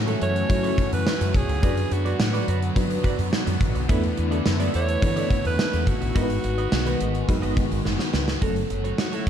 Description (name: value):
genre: 1980s-style pop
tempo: 106 BPM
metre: 4/4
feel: straight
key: F# minor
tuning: A4 = 439 Hz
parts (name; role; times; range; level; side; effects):
- FM electric piano with tremolo; accompaniment; 0.0-9.3 s; F#3 to C#5; -30 LUFS; left 2 dB; phaser
- thick fuzz guitar; accompaniment; 0.0-9.3 s; E2 to B3; -35 LUFS; left 1 dB; distortion, wide subtle chorus
- sweeping resonant pad; sustained chords; 0.0-9.3 s; D3 to C#6; -31 LUFS; left 1 dB; chorus
- mellow fretless electric bass; bass; 0.0-9.3 s; F#1 to F#3; -26 LUFS; equal; wide subtle chorus
- twelve-string electric guitar; riff; 0.1-9.3 s; E4 to D#5; -34 LUFS; right 8 dB; analog chorus, ping-pong delay
- gated 80s drum kit; drums; 0.1-9.3 s; hi-hat, kick drum, snare drum, tambourine; -24 LUFS; equal; none
- raspy alto saxophone; melody; 0.2-9.3 s; E4 to C#5; -30 LUFS; right 3 dB; none
room: light reverb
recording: dark, warm production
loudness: -20 LUFS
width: side -9 dB against mid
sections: 0.0-8.4 A section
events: drum fill 7.9-8.4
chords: 0.0 F#m7; 1.6 Bm/F#; 3.9 E7sus4; 6.2 G#m7; 8.4 F#m